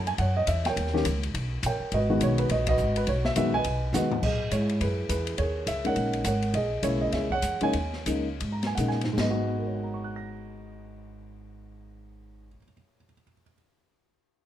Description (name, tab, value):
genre	jazz piano trio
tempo	145-208 BPM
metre	4/4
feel	swing 60% on 8ths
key	G# minor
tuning	A4 = 441 Hz
part	dark baby grand piano	melody	0.0-13.5 s	G#2 to A#6	-28 LUFS	right 1 dB	plate reverb
part	upright bass	bass	0.0-12.5 s	G#1 to A#2	-30 LUFS	equal	none
part	open jazz drum kit	drums	0.1-9.3 s	crash cymbal, hi-hat, kick drum, ride cymbal, snare drum, splash cymbal, toms	-34 LUFS	left 3 dB	none
room	light reverb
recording	none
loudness	-24 LUFS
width	side -11 dB against mid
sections	0.0-4.2 A section; 4.2-9.2 B section; 9.2-12.5 C section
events	band accent 2.6; drum fill 3.9; slowing down 6.5-9.2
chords	0.0 A6 (rootless); 0.8 D#7; 1.9 G#m7; 4.2 A#m7b5; 5.4 D#7sus4; 6.5 A#m7b5; 7.7 D#7sus4; 9.2 G#m7